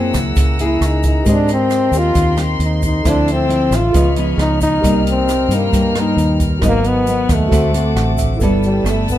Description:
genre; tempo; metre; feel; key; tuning
bossa nova; 134 BPM; 4/4; straight; unclear; A4 = 440 Hz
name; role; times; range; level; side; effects
breathy trombone; melody; 0.0-9.2 s; G3 to F4; -18 LUFS; left 1 dB; plate reverb
nylon-string guitar; accompaniment; 0.0-9.2 s; G2 to Bb4; -20 LUFS; left 2 dB; none
tine electric piano; accompaniment; 0.0-9.2 s; E4 to F#5; -25 LUFS; right 4 dB; medium stereo tremolo
rich chamber string section; sustained chords; 0.0-9.2 s; B4 to F6; -27 LUFS; left 4 dB; none
fingered electric bass; bass; 0.0-9.2 s; G1 to Ab2; -18 LUFS; equal; none
open jazz drum kit; drums; 0.1-9.2 s; hi-hat, kick drum, rim click; -21 LUFS; equal; none
egg shaker; percussion; 0.1-9.2 s; none; -36 LUFS; left 7 dB; none
room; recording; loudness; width
light reverb; dark, warm production; -13 LUFS; side -12 dB against mid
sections
0.0-8.4 A section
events
tine electric piano fill 7.7-8.4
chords
0.0 Gb9; 1.3 Abmaj9; 3.0 Dm9; 3.9 Db9; 4.8 Cm7; 6.6 Abm7; 7.5 D7; 8.4 G69

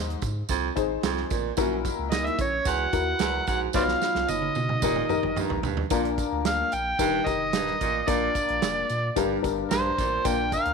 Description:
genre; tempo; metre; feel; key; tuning
uptempo 1960s-style soul; 111 BPM; 4/4; straight; Bb major from 5.9 s; A4 = 441 Hz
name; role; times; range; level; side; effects
dark upright piano; accompaniment; 0.0-10.7 s; G2 to C5; -29 LUFS; left 11 dB; none
saturated sub bass; bass; 0.0-10.7 s; Eb1 to B2; -33 LUFS; equal; none
natural country drum kit; drums; 0.1-10.7 s; hi-hat, kick drum, snare drum, toms; -30 LUFS; right 4 dB; none
tambourine; percussion; 0.2-10.7 s; none; -40 LUFS; right 14 dB; none
warm baritone saxophone; riff; 0.5-10.5 s; Fb2 to B2; -31 LUFS; right 12 dB; none
overdriven harmonica; melody; 2.1-10.7 s; C5 to G5; -26 LUFS; equal; none
vibraphone with soft mallets; second line; 2.1-5.4 s; Db4 to Gb4; -34 LUFS; right 13 dB; none
room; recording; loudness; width
moderate echo chamber reverb, RT60 1.9 s, small room reverb; 1960s-style stereo with parts hard left and right; -23 LUFS; side -5 dB against mid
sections
0.0-5.9 A section; 5.9-10.7 B section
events
drum fill 3.7-5.9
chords
0.0 Ab; 1.6 Gb7/Bb; 3.7 B; 4.8 Eb; 5.9 Bb; 7.0 Eb; 8.1 Bb; 9.2 Gm

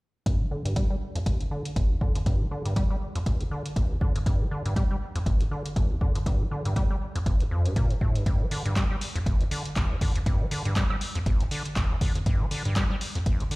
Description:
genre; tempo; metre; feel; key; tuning
acid house; 120 BPM; 4/4; swing 57% on 16ths; unclear; A4 = 440 Hz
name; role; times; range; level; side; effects
acid bass, square; riff; 0.3-13.6 s; G1 to G3; -29 LUFS; equal; overdrive, tape echo
electro analog drum machine; drums; 0.3-13.6 s; handclaps, hi-hat, woodblock; -36 LUFS; equal; none
electronic kick drum; drums; 0.3-13.4 s; none; -25 LUFS; equal; none
room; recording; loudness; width
light reverb; played on a big sound system in a bare room, large studio reverb; -24 LUFS; side -23 dB against mid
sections
0.3-13.6 A section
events
filter sweep on acid bass 0.3-13.6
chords
none

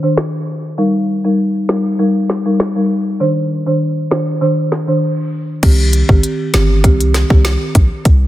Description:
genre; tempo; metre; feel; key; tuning
dancehall; 99 BPM; 4/4; straight; C minor; A4 = 440 Hz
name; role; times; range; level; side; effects
folk marimba with medium mallets; accompaniment; 0.0-7.5 s; Eb3 to C5; -15 LUFS; equal; none
island pop drum kit; drums; 0.2-8.2 s; crash cymbal, hi-hat, kick drum, snare drum; -14 LUFS; equal; none
hard-hitting 808-style bass; bass; 5.6-8.3 s; G1 to C2; -13 LUFS; equal; none
room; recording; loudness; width
light reverb; dense, heavily limited modern master, low-pass filter; -12 LUFS; side -15 dB against mid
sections
0.0-5.6 A section; 5.6-8.3 B section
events
break 5.0-5.6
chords
0.0 Cmadd9; 0.8 Eb; 3.2 Cmadd9; 5.6 Cm

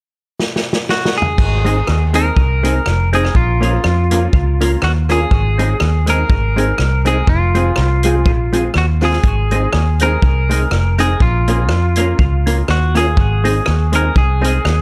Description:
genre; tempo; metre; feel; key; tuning
ska; 122 BPM; 4/4; swing 56% on 8ths; Ab major; A4 = 440 Hz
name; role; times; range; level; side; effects
vintage drum kit; drums; 0.4-14.8 s; crash cymbal, hi-hat, kick drum, rim click, snare drum, toms; -20 LUFS; equal; none
clean electric guitar; melody; 0.9-14.8 s; F4 to Bb4; -22 LUFS; equal; dub echo
vintage muted fingered electric bass; bass; 1.4-14.8 s; F1 to F2; -18 LUFS; equal; none
hollow-body jazz guitar; accompaniment; 1.6-14.6 s; Ab3 to Bb4; -24 LUFS; equal; dub echo
percussive tonewheel organ; stabs; 1.6-14.5 s; C4 to Bb4; -27 LUFS; equal; chorus vibrato, slow rotary speaker, dub echo
room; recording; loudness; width
light reverb, small room reverb; none; -15 LUFS; mono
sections
0.0-1.4 A section; 1.4-14.8 B section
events
drum fill 0.4-1.4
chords
0.0 N.C.; 1.4 Ab; 3.3 Bbm; 5.3 Ab; 7.3 Fm; 9.2 Ab; 11.2 Bbm; 13.2 Ab

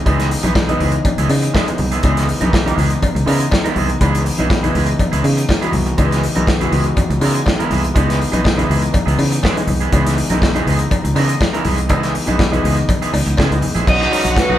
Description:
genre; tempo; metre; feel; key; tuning
disco; 122 BPM; 4/4; straight; unclear; A4 = 439 Hz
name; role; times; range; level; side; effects
warm concert grand piano; accompaniment; 0.0-14.6 s; D#3 to F#4; -21 LUFS; left 1 dB; none
electric guitar through a small old amp; accompaniment; 0.1-14.6 s; F#3 to A#4; -23 LUFS; right 4 dB; none
fingered electric bass; bass; 0.1-14.6 s; A#1 to C#3; -18 LUFS; equal; none
modern studio drum kit; drums; 0.1-14.5 s; crash cymbal, hi-hat, kick drum, snare drum; -19 LUFS; equal; none
congas; percussion; 0.1-14.6 s; none; -26 LUFS; left 1 dB; none
cowbell; percussion; 0.1-14.5 s; none; -28 LUFS; left 4 dB; none
growling alto saxophone; melody; 13.9-14.6 s; B4 to D#5; -18 LUFS; right 1 dB; none
dark studio violin section; second line; 13.9-14.6 s; F#4 to F#5; -20 LUFS; equal; none
room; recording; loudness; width
moderate large studio reverb, RT60 1.0 s; band playing live in one room; -13 LUFS; side -12 dB against mid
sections
0.0-13.9 A section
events
none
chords
0.0 C#m7; 13.9 B6

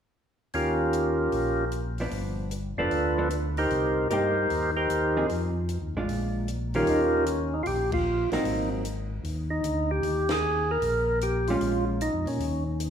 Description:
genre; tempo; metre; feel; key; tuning
soul jazz organ trio; 152 BPM; 4/4; swing 66% on 8ths; Eb mixolydian; A4 = 440 Hz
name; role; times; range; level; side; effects
percussive tonewheel organ; melody; 0.5-12.6 s; Eb3 to C5; -26 LUFS; equal; slow rotary speaker, overdrive
tonewheel organ; bass; 0.5-12.9 s; F1 to Bb2; -30 LUFS; equal; overdrive, chorus vibrato, slow rotary speaker
compact cocktail drum kit; drums; 0.5-12.9 s; hi-hat, kick drum, ride cymbal, snare drum; -39 LUFS; left 1 dB; none
vintage hollow-body jazz guitar; accompaniment; 2.0-8.8, 11.5-12.0 s; Eb3 to Ab4; -32 LUFS; right 1 dB; none
room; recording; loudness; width
wet scoring stage reverb, RT60 1.5 s; recorded in a church or concert hall; -24 LUFS; side -8 dB against mid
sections
0.5-6.9 A section; 6.9-12.9 B section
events
band accent 7.9, 10.2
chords
0.5 Eb7; 2.1 G7; 3.7 Cm7; 5.3 Fm7; 6.1 Bb7; 6.9 Eb9; 8.5 Ab9; 10.0 Eb5; 11.6 Bbm7

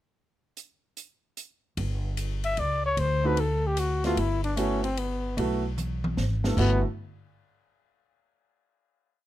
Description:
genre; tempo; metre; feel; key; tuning
jazz, small-group swing and bop; 150 BPM; 3/4; swing 66% on 8ths; G major; A4 = 442 Hz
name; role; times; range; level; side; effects
open jazz drum kit; drums; 0.6-6.7 s; crash cymbal, hi-hat, kick drum, ride cymbal, snare drum, toms; -36 LUFS; left 1 dB; none
upright bass; bass; 1.8-6.8 s; G1 to D2; -28 LUFS; equal; none
breathy trumpet; melody; 2.4-6.8 s; B3 to E5; -28 LUFS; left 3 dB; none
warm upright piano; accompaniment; 3.2-6.8 s; G2 to A4; -28 LUFS; right 2 dB; none
room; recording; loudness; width
little or no reverb; close, detailed microphones; -25 LUFS; side -13 dB against mid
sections
0.6-1.8 pickup bar; 1.8-6.6 A section; 6.6-7.8 final chord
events
drum fill 5.8-6.6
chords
0.6 N.C.; 1.8 C#(b5, no3)/G; 3.0 D7; 4.2 Gmaj13

